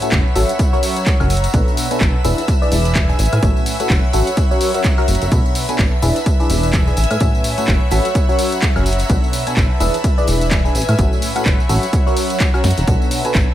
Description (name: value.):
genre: piano house.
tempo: 127 BPM.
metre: 4/4.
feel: swing 58% on 16ths.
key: B dorian.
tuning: A4 = 441 Hz.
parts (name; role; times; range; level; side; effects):
string machine, violins; sustained chords; 0.0-13.5 s; E5 to E6; -28 LUFS; equal; ensemble chorus, sidechain pumping.
barking FM electric piano; riff; 0.0-13.5 s; A2 to G#5; -21 LUFS; left 1 dB; phaser, sidechain pumping, tape echo.
punchy analog drum machine; drums; 0.0-13.5 s; handclaps, hi-hat, snare drum, tambourine, woodblock; -24 LUFS; left 1 dB; none.
tambourine; percussion; 0.0-13.5 s; none; -34 LUFS; right 2 dB; none.
airy breathy pad; texture; 0.0-13.5 s; B4 to B5; -24 LUFS; equal; chorus, sidechain pumping.
plucky analog bass; bass; 0.1-13.4 s; E1 to A2; -18 LUFS; equal; tube saturation, sidechain pumping.
electronic kick drum; drums; 0.1-13.5 s; none; -16 LUFS; equal; none.
room: little or no reverb.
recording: none.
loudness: -13 LUFS.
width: side -12 dB against mid.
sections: 0.0-13.5 A section.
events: drum fill 12.6.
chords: 0.0 A6; 0.6 F#7; 1.5 Bm7; 2.2 E7; 3.2 A6; 4.4 F#7; 5.3 Bm7; 6.0 E7; 7.0 A6; 8.2 F#7; 9.1 Bm7; 9.8 E7; 10.7 A6; 11.9 F#7; 12.9 Bm7.